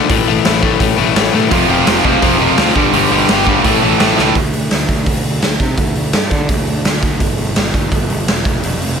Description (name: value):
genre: punk rock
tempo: 168 BPM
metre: 4/4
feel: straight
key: unclear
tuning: A4 = 440 Hz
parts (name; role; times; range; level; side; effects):
- overdriven electric guitar; riff; 0.0-4.3 s; F2 to A3; -14 LUFS; left 12 dB; none
- fuzz picked electric bass; bass; 0.1-9.0 s; E1 to D3; -19 LUFS; right 1 dB; overdrive
- raw garage drum kit; drums; 0.1-8.9 s; hi-hat, kick drum, snare drum; -15 LUFS; right 1 dB; none
- tight distorted guitar; riff; 1.5-4.3 s; F2 to A3; -14 LUFS; right 15 dB; distortion
room: light reverb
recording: none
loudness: -11 LUFS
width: side -6 dB against mid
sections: 0.0-4.4 A section; 4.4-9.0 B section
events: drum fill 4.2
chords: 0.1 A5; 1.5 F5; 2.8 G5; 3.6 A; 4.4 N.C.; 7.2 Em; 8.5 N.C.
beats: | 0.10 0.45 0.81 1.16 | 1.52 1.87 2.23 2.58 | 2.94 3.29 3.65 4.00 | 4.36 4.71 5.07 5.43 | 5.78 6.14 6.50 6.85 | 7.21 7.57 7.92 8.28 | 8.63